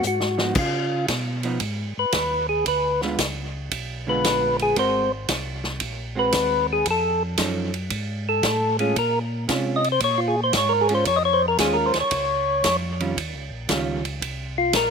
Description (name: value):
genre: soul jazz organ trio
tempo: 114 BPM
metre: 4/4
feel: swing 68% on 8ths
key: unclear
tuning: A4 = 440 Hz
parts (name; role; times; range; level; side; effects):
- percussive tonewheel organ; melody; 0.0-14.9 s; F4 to Eb5; -21 LUFS; left 1 dB; slow rotary speaker, slapback echo
- vintage hollow-body jazz guitar; accompaniment; 0.0-14.0 s; D3 to Bb4; -28 LUFS; right 4 dB; slapback echo
- mellow tonewheel organ; bass; 0.0-14.9 s; Ab1 to Db3; -29 LUFS; equal; slow rotary speaker
- swinging big-band drum kit; drums; 0.0-14.9 s; crash cymbal, hi-hat, kick drum, ride cymbal, snare drum; -27 LUFS; right 1 dB; none
room: little or no reverb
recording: recorded outdoors, with no room sound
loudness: -20 LUFS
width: side -6 dB against mid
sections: 0.0-14.9 A section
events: tonewheel organ solo 0.0-14.9; drum fill 0.0-0.6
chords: 0.0 Ab7(no3); 0.6 Db9; 2.7 Ddim7; 4.8 Ab9; 6.9 F7alt; 9.0 Bbm7; 13.2 Eb9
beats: 0.04 | 0.56 1.08 1.61 2.13 | 2.66 3.18 3.71 4.23 | 4.76 5.28 5.81 6.33 | 6.86 7.39 7.91 8.44 | 8.96 9.49 10.02 10.54 | 11.07 11.59 12.12 12.64 | 13.17 13.69 14.22 14.74